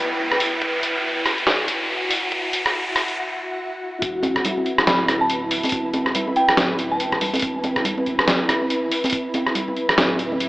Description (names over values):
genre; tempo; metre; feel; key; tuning
deep dubstep; 141 BPM; 4/4; swing 59% on 16ths, half-time; unclear; A4 = 439 Hz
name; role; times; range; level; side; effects
dark detuned synth bell; melody; 0.0-0.3, 4.9-7.3 s; G5 to B5; -26 LUFS; equal; chorus, phaser, dub echo
granular cloud pad; sustained chords; 0.0-10.5 s; E4 to B4; -26 LUFS; equal; built-in reverb
riser; sound effects; 0.0-3.2 s; none; -24 LUFS; equal; none
trip hop sampler-style drum kit; drums; 0.3-10.5 s; hi-hat, rim click, snare drum; -21 LUFS; equal; none
electronic kick drum; drums; 0.6-9.2 s; none; -30 LUFS; equal; high-pass filter on kick
soft dub sub bass; bass; 4.0-10.5 s; D1 to E1; -36 LUFS; equal; none
congas; percussion; 4.2-10.4 s; none; -25 LUFS; right 1 dB; none
room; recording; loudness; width
moderate huge ambient reverb, RT60 4.8 s; high-pass filter, AM radio sound; -18 LUFS; side -19 dB against mid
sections
0.0-4.0 A section; 4.0-10.5 B section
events
build-up 0.0-4.0; riser 0.0-3.2; break 3.2-4.0; drop 4.0-10.5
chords
0.0 E5